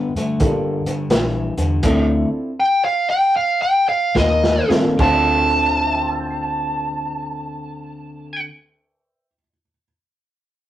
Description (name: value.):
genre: electric blues shuffle.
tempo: 70-87 BPM.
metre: 4/4.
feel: swing 65% on 8ths.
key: D minor.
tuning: A4 = 441 Hz.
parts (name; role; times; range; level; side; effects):
electric guitar at the edge of break-up; riff; 0.0-8.5 s; G2 to A4; -24 LUFS; left 2 dB; none.
vintage muted fingered electric bass; bass; 0.0-8.4 s; G1 to G2; -24 LUFS; equal; none.
crunchy breakbeat drum kit; drums; 0.2-5.2 s; crash cymbal, hi-hat, kick drum, snare drum; -21 LUFS; equal; none.
dark baby grand piano; accompaniment; 0.4-9.8 s; D2 to E7; -23 LUFS; equal; none.
smooth overdriven lead guitar; melody; 2.6-8.4 s; Eb5 to A5; -18 LUFS; equal; none.
electric slide guitar; second line; 5.0-8.4 s; A5; -26 LUFS; right 8 dB; none.
room: wet studio reverb, RT60 0.6 s.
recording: rough rehearsal-room recording, warm saturation.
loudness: -16 LUFS.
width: side -12 dB against mid.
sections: 0.0-5.0 A section; 5.0-8.4 B section.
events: slowing down 0.0-5.0; drum fill 4.2-5.0.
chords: 0.4 Gm7; 1.8 Dm7; 4.2 Eb; 5.0 Dm7.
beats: 0.41 1.12 | 1.84 2.59 3.36 4.15 | 4.99 5.84 6.69 7.55.